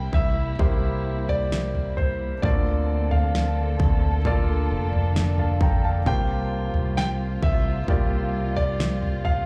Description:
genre	pop ballad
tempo	66 BPM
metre	4/4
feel	straight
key	unclear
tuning	A4 = 439 Hz
part	clear concert grand piano	melody	0.0-9.5 s	C5 to G5	-32 LUFS	equal	slapback echo
part	clear concert grand piano	accompaniment	0.0-9.5 s	C3 to Bb5	-33 LUFS	equal	slapback echo
part	dark studio string section	sustained chords	0.0-9.5 s	C3 to A4	-35 LUFS	equal	none
part	mellow fretless electric bass	bass	0.0-9.5 s	F1 to D2	-27 LUFS	equal	subtle chorus
part	pop drum kit	drums	0.1-9.5 s	kick drum, snare drum, toms	-26 LUFS	equal	none
room	studio ambience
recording	live gig heard through the venue's PA, club reverb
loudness	-23 LUFS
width	mono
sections	0.0-9.5 A section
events	none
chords	0.0 C7; 2.4 Bbmaj7/D; 6.1 C7sus4

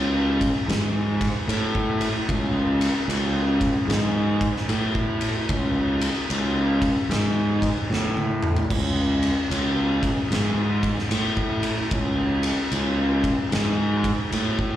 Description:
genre	stoner and doom metal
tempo	75 BPM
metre	4/4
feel	swing 65% on 8ths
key	unclear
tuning	A4 = 439 Hz
part	fuzz fingered electric bass	bass	0.0-14.8 s	C#2 to A2	-22 LUFS	equal	overdrive, tube saturation
part	oversized low-tuned drum kit	drums	0.4-14.8 s	crash cymbal, kick drum, ride cymbal, snare drum, toms	-25 LUFS	equal	none
room	little or no reverb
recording	live gig heard through the venue's PA, recital hall reverb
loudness	-20 LUFS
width	side -12 dB against mid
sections	0.0-14.8 A section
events	drum fill 7.9-8.7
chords	none

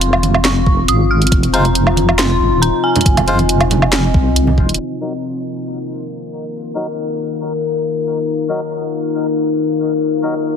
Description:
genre	deep dubstep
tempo	138 BPM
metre	4/4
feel	half-time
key	unclear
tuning	A4 = 441 Hz
part	dark detuned synth bell	melody	0.0-4.5 s	Ab5 to F6	-21 LUFS	right 2 dB	chorus, tremolo, dub echo
part	deep dark ambient pad	sustained chords	0.0-10.6 s	C4 to F5	-18 LUFS	left 4 dB	chorus, built-in reverb
part	deep soft wobble bass	bass	0.0-4.8 s	Eb1 to C2	-16 LUFS	equal	chorus
part	garage drum kit	drums	0.0-4.8 s	handclaps, hi-hat, snare drum, woodblock	-17 LUFS	right 2 dB	overdrive
part	congas	percussion	0.2-4.6 s	none	-21 LUFS	right 4 dB	none
part	electronic kick drum	drums	0.7-4.7 s	none	-14 LUFS	equal	none
part	melodica	stabs	1.5-10.3 s	Gb3 to C5	-25 LUFS	left 1 dB	low-pass filter, dub echo
room	light reverb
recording	heavily compressed radio sound, multiband compression, low-pass filter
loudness	-13 LUFS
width	side -7 dB against mid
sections	0.0-4.8 A section; 4.8-10.6 B section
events	filter sweep on melodica 4.8-10.6; filter sweep 4.8-10.6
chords	0.0 Fm; 4.8 Eb5

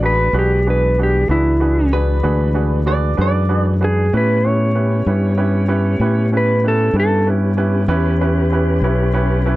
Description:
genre	blues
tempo	64 BPM (dotted quarters)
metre	12/8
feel	straight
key	unclear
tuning	A4 = 441 Hz
part	clean lap steel guitar	melody	0.0-7.3 s	E4 to C#5	-18 LUFS	equal	none
part	clear upright piano	accompaniment	0.0-9.6 s	C#4 to B4	-22 LUFS	right 4 dB	none
part	tonewheel organ	sustained chords	0.0-9.6 s	E3 to B4	-26 LUFS	left 2 dB	slow rotary speaker
part	fingered electric bass	bass	0.0-9.6 s	A1 to A2	-16 LUFS	equal	none
part	electric guitar through a small old amp	second line	1.9-3.7 s	B4 to D5	-23 LUFS	equal	none
room	little or no reverb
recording	dry, close 1970s-style studio recording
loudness	-14 LUFS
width	side -17 dB against mid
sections	0.0-9.6 A section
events	none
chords	0.0 E9; 4.1 A9

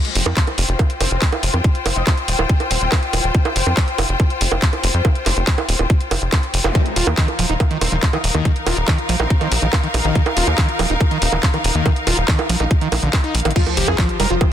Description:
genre	psychedelic trance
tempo	141 BPM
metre	4/4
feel	straight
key	unclear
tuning	A4 = 441 Hz
part	garage drum kit	drums	0.0-14.5 s	bongos, crash cymbal, handclaps, hi-hat	-21 LUFS	right 3 dB	none
part	bright symphonic string section	texture	0.0-14.5 s	Eb4 to G5	-24 LUFS	left 3 dB	sidechain pumping
part	tight sequencer bass	bass	0.2-14.4 s	Eb1 to F2	-20 LUFS	equal	none
part	electronic kick drum	drums	0.4-14.5 s	none	-16 LUFS	equal	none
part	metallic wobble bass	second line	1.0-2.9, 7.8-9.5 s	C4 to Eb4	-32 LUFS	left 3 dB	distortion, analog chorus, sidechain pumping, high-pass filter, ping-pong delay
part	zap and sub drop	sound effects	6.6-6.8, 13.6-14.5 s	none	-27 LUFS	equal	none
part	screaming distorted acid line	riff	6.8-14.3 s	D3 to G4	-24 LUFS	moving between left 7 dB and right 5 dB	distortion, chorus, auto-pan, sidechain pumping, dub echo
part	wide unison lead	melody	13.6-14.5 s	F3 to Bb4	-22 LUFS	left 2 dB	phaser, sidechain pumping, dub echo
room	light reverb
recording	dense, heavily limited modern master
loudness	-15 LUFS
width	side -10 dB against mid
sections	0.0-13.6 A section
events	drum fill 13.3; impact 13.6-14.5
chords	0.0 F5; 6.8 Eb5; 13.6 F5

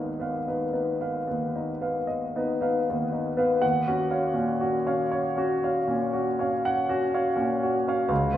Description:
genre	classical, impressionist solo piano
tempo	36-42 BPM (dotted quarters)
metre	9/8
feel	rubato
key	unclear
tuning	A4 = 441 Hz
part	warm grand piano	solo	0.0-8.4 s	G#1 to F#5	-24 LUFS	equal	none
room	wet recital hall reverb, RT60 1.5 s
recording	heard from further back in the room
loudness	-24 LUFS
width	side -12 dB against mid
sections	0.0-8.4 A section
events	none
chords	0.0 G#m6; 3.6 D#m9

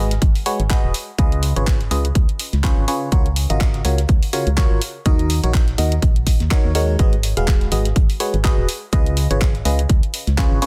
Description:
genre	piano house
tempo	124 BPM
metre	4/4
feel	swing 57% on 16ths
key	G# dorian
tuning	A4 = 440 Hz
part	barking FM electric piano	riff	0.0-10.7 s	C#3 to E#5	-26 LUFS	equal	chorus, phaser, sidechain pumping, tape echo
part	organ-like FM bass	bass	0.0-10.6 s	D#1 to D#2	-22 LUFS	equal	sidechain pumping
part	cloth-damped thuddy drum kit	drums	0.1-10.7 s	hi-hat, shaker, snare drum	-48 LUFS	equal	none
part	house drum kit	drums	0.1-10.7 s	handclaps, hi-hat	-29 LUFS	equal	soft clipping on snare
part	electronic kick drum	drums	0.2-10.5 s	none	-19 LUFS	equal	none
room	small room reverb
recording	dense, heavily limited modern master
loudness	-18 LUFS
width	mono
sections	0.0-10.7 A section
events	none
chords	0.0 G#m7; 0.9 C#7; 3.1 F#maj7; 4.8 D#m7; 7.0 G#m7; 8.7 C#7

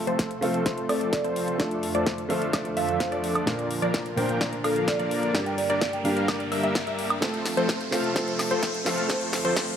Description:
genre	EDM, festival progressive house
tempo	128 BPM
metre	4/4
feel	straight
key	F major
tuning	A4 = 440 Hz
part	warm grand piano	accompaniment	0.0-9.8 s	G2 to Bb4	-30 LUFS	right 2 dB	sidechain pumping
part	lush unison pad	sustained chords	0.0-9.8 s	F2 to Bb4	-35 LUFS	left 1 dB	chorus, sidechain pumping
part	riser	sound effects	2.6-9.8 s	none	-37 LUFS	equal	none
part	wide unison pluck	arpeggios	0.1-9.7 s	C5 to G5	-32 LUFS	left 1 dB	sidechain pumping, tape echo
part	supersaw chords	riff	0.1-9.7 s	F3 to G5	-29 LUFS	equal	sidechain pumping, low-pass filter
part	big-room dance drum kit	drums	0.1-9.8 s	hi-hat, snare drum, woodblock	-31 LUFS	equal	high-pass filter on hats, high-pass filter on snare, high-pass filter on perc
part	electronic kick drum	drums	0.2-9.7 s	none	-30 LUFS	left 1 dB	high-pass filter on kick
part	marimba with soft mallets	melody	0.4-9.0 s	A4 to G5	-31 LUFS	equal	tape echo
room	light reverb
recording	high-pass filter, faint mains hum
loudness	-23 LUFS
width	side -8 dB against mid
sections	0.0-9.8 A section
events	build-up 0.0-9.8; drum fill 0.0-9.8; filter sweep on supersaw synth 0.0-9.8; filter sweep 0.0-9.8; riser 2.6-9.8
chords	0.0 F; 1.6 Dm/F; 3.5 Bb; 5.3 Gm; 7.2 F; 9.1 Dm/F

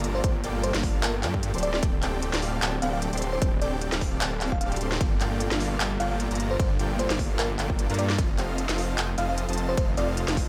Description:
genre	future bass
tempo	151 BPM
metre	4/4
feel	swing 55% on 16ths, half-time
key	G minor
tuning	A4 = 440 Hz
part	ethereal airy pad	sustained chords	0.1-10.5 s	A3 to D5	-43 LUFS	equal	none
part	dense compressed supersaw	riff	0.0-10.5 s	Bb3 to C6	-34 LUFS	equal	sidechain pumping
part	detuned saw bass	bass	0.0-10.5 s	D1 to G2	-31 LUFS	equal	chorus, sidechain pumping
part	trap drum kit	drums	0.0-10.5 s	handclaps, hi-hat, ride cymbal, snare drum	-33 LUFS	equal	none
part	bell-like FM electric piano	melody	0.1-10.1 s	Bb4 to F5	-34 LUFS	equal	chorus, sidechain pumping, delay
part	electronic kick drum	drums	0.2-10.5 s	none	-29 LUFS	equal	overdrive
room	digital ambience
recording	none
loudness	-26 LUFS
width	mono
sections	0.0-10.5 A section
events	none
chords	0.0 Gm9; 1.6 D7sus4; 5.0 Gm9; 8.2 F7

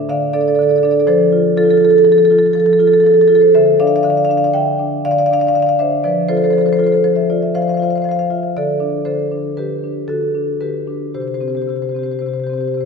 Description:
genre	classical, contemporary piece for solo marimba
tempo	120 BPM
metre	5/4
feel	rubato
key	unclear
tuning	A4 = 439 Hz
part	marimba with medium hard mallets	solo	0.0-12.9 s	C3 to G5	-12 LUFS	equal	none
room	wet concert hall reverb, RT60 2.3 s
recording	recorded in a church or concert hall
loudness	-12 LUFS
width	side -5 dB against mid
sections	0.0-12.9 A section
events	none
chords	0.0 Dm; 1.1 F; 3.5 Dm11; 6.0 F; 8.5 D7; 11.1 C5

